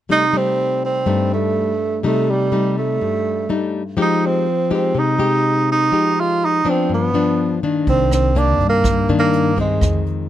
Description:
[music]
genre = bossa nova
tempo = 124 BPM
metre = 4/4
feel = straight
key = C minor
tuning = A4 = 440 Hz
[part]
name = breathy tenor saxophone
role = melody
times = 0.1-10.0 s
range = G3 to F4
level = -18 LUFS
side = right 4 dB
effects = none
[part]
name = nylon-string guitar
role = accompaniment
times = 0.1-10.3 s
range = F2 to G4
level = -19 LUFS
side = left 4 dB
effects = none
[part]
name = upright bass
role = bass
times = 7.9-10.3 s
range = C2 to G2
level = -19 LUFS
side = equal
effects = none
[part]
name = jazz brush drum kit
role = drums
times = 7.9-10.2 s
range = hi-hat, kick drum, rim click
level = -23 LUFS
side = right 1 dB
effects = none
[sound]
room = little or no reverb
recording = close, detailed microphones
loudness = -15 LUFS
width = side -12 dB against mid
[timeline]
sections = 0.1-7.9 A section; 7.9-10.3 B section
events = none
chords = 0.1 Cm6; 4.0 Fm9; 6.9 G7; 7.9 Cm9

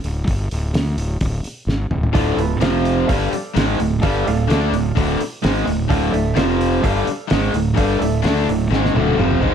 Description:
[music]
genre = classic rock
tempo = 128 BPM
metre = 4/4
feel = straight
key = unclear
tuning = A4 = 437 Hz
[part]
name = fuzz fingered electric bass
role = bass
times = 0.0-9.5 s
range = D1 to D2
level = -21 LUFS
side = equal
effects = overdrive
[part]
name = cloth-damped thuddy drum kit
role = drums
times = 0.0-9.5 s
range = hi-hat, kick drum, snare drum, toms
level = -22 LUFS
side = equal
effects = none
[part]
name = warm baby grand piano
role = accompaniment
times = 2.1-8.8 s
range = F4 to F5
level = -27 LUFS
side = right 5 dB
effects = plate reverb
[part]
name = distorted electric guitar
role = riff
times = 2.1-9.5 s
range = D2 to D4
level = -21 LUFS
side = right 10 dB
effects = distortion
[part]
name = raw garage guitar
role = riff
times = 2.1-9.5 s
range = D2 to D4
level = -21 LUFS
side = left 11 dB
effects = overdrive
[sound]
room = moderate large studio reverb, RT60 0.7 s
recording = none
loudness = -16 LUFS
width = side -8 dB against mid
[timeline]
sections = 0.0-9.5 A section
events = drum fill 1.7-2.1, 8.7-9.5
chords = 0.0 Dm; 2.6 F5; 3.1 Dm; 6.4 F5; 6.8 Dm

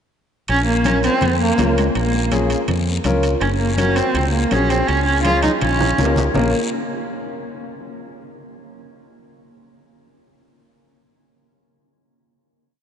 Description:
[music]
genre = latin, cumbia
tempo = 164 BPM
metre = 4/4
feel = straight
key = Bb minor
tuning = A4 = 440 Hz
[part]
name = warm cello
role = melody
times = 0.5-6.5 s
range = Ab3 to F4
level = -20 LUFS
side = right 1 dB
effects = none
[part]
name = fingered electric bass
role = bass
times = 0.5-6.5 s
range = Gb1 to F2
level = -20 LUFS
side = equal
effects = none
[part]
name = guiro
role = percussion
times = 0.5-6.4 s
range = none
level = -33 LUFS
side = left 5 dB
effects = none
[part]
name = timbales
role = percussion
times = 0.5-6.4 s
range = none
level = -30 LUFS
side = right 5 dB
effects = none
[part]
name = congas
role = percussion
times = 0.8-6.4 s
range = none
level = -27 LUFS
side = left 1 dB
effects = none
[part]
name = clear upright piano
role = accompaniment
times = 0.9-6.5 s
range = Db4 to Bb4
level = -23 LUFS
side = left 3 dB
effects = none
[sound]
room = wet cathedral reverb, RT60 5.1 s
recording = in a vast, echoing space, nothing above 10.9 kHz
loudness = -15 LUFS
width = side -8 dB against mid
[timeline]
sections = 0.5-6.4 A section; 6.4-7.8 final chord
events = drum fill 5.3-6.4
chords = 0.5 Bbm; 3.4 Gb; 4.9 Db; 5.6 Bbm

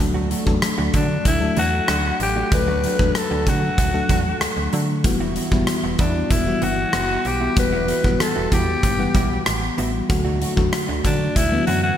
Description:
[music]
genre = 1980s-style pop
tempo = 95 BPM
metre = 4/4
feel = straight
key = unclear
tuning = A4 = 440 Hz
[part]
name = FM electric piano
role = accompaniment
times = 0.0-12.0 s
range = D3 to F#5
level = -24 LUFS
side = left 3 dB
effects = chorus
[part]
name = mellow electric guitar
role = riff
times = 0.0-11.9 s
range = F#3 to F#4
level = -29 LUFS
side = right 5 dB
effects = analog chorus
[part]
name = slap-like FM bass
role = bass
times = 0.0-11.9 s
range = E1 to D3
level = -25 LUFS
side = right 1 dB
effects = none
[part]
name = big rock drum kit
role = drums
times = 0.3-11.8 s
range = hi-hat, kick drum, rim click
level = -22 LUFS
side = right 1 dB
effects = gated reverb
[part]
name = raspy alto saxophone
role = melody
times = 1.0-12.0 s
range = D4 to B4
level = -23 LUFS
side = left 2 dB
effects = ping-pong delay
[sound]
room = moderate lush hall reverb, RT60 2.3 s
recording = bright 1980s-style digital production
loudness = -17 LUFS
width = side -10 dB against mid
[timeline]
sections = 0.0-12.0 A section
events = none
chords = 0.0 D; 5.0 Emadd9; 10.1 D

